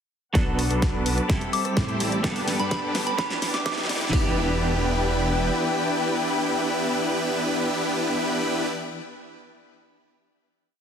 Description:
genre	EDM, festival progressive house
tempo	127 BPM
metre	4/4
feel	straight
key	E minor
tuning	A4 = 439 Hz
part	twelve-string electric guitar	accompaniment	0.3-9.0 s	E3 to A4	-30 LUFS	right 2 dB	tremolo, sidechain pumping, ping-pong delay
part	supersaw chords	riff	0.3-8.7 s	B3 to D5	-26 LUFS	equal	sidechain pumping, low-pass filter, ping-pong delay
part	muted studio string section	sustained chords	0.4-8.7 s	E4 to E6	-33 LUFS	left 4 dB	sidechain pumping, low-pass filter
part	wide detuned saw bass	bass	0.4-5.5 s	E1 to A2	-28 LUFS	equal	chorus, sidechain pumping
part	big-room dance drum kit	drums	0.4-4.2 s	hi-hat, kick drum	-24 LUFS	equal	none
part	big-room dance drum kit	drums	0.4-4.2 s	hi-hat, rim click, snare drum	-30 LUFS	equal	none
part	riser	sound effects	2.3-4.1 s	none	-36 LUFS	right 1 dB	none
part	soft synth bell	melody	1.5-3.7 s	B5 to D6	-31 LUFS	right 1 dB	chorus, phaser, ping-pong delay
room	moderate lush hall reverb, RT60 2.3 s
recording	heavily compressed radio sound, high-pass filter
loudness	-22 LUFS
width	side -7 dB against mid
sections	0.4-4.1 build; 4.1-7.9 final chord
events	build-up 0.4-4.1; drum fill 0.4-4.1; filter sweep on supersaw synth 0.4-4.1; filter sweep on string section 0.4-4.1; filter sweep 0.4-4.1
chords	0.4 Bm7; 1.3 Am7; 2.2 Gadd9; 3.2 Em7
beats	| 0.35 0.82 1.30 1.77 | 2.24 2.71 3.19 3.66 | 4.13 4.60 5.08 5.55 | 6.02 6.49 6.96 7.44

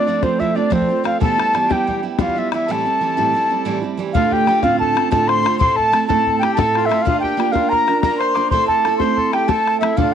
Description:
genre	celtic folk, Celtic slip jig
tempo	123 BPM (dotted quarters)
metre	9/8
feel	straight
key	A minor, D minor from 4.1 s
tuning	A4 = 440 Hz
part	bright reedy baroque flute	melody	0.0-10.1 s	C5 to C6	-18 LUFS	left 1 dB	cassette tape
part	accordion	second line	0.0-10.1 s	C4 to C5	-25 LUFS	left 12 dB	cassette tape
part	concert harp	second line	0.0-10.1 s	C5 to D6	-29 LUFS	right 8 dB	cassette tape
part	picked steel-string acoustic guitar	accompaniment	0.0-10.1 s	D2 to Bb4	-20 LUFS	right 7 dB	cassette tape
part	bodhran	percussion	0.2-10.1 s	none	-22 LUFS	left 5 dB	none
room	moderate spring reverb, RT60 1.3 s, small room ambience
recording	home recording on cassette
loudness	-15 LUFS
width	side -8 dB against mid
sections	0.0-4.1 A section; 4.1-10.1 B section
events	none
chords	0.0 F; 1.2 Em; 2.7 Am7; 4.1 Dm7; 5.6 Am; 7.1 Bb; 8.5 Am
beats	0.23 0.72 | 1.21 1.70 2.18 | 2.67 3.16 3.65 | 4.14 4.63 5.11 | 5.60 6.09 6.57 | 7.06 7.55 8.03 | 8.52 9.00 9.49 | 9.98

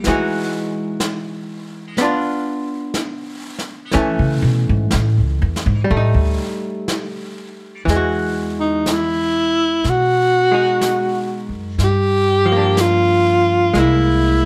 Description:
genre	jazz ballad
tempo	61 BPM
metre	4/4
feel	swing 69% on 8ths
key	unclear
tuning	A4 = 439 Hz
part	archtop guitar, miked and amplified	accompaniment	0.0-14.5 s	E3 to F#4	-24 LUFS	equal	none
part	jazz brush drum kit	drums	0.0-14.5 s	brushed snare drum, hi-hat, snare drum	-30 LUFS	equal	none
part	upright bass	bass	0.1-14.5 s	C2 to G#3	-21 LUFS	equal	none
part	breathy alto saxophone	melody	8.6-14.5 s	D#4 to G4	-18 LUFS	equal	none
room	light reverb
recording	none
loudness	-17 LUFS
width	mono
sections	0.0-7.9 A section; 7.9-14.5 B section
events	upright bass solo 0.0-7.9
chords	0.0 Emaj9; 2.0 Bdim; 3.9 Amaj9; 5.9 D#(#11); 7.9 Emaj9; 11.8 Gm7; 13.7 Caug7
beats	| 0.05 1.01 1.98 2.95 | 3.93 4.91 5.89 6.88 | 7.88 8.86 9.84 10.82 | 11.80 12.77 13.74

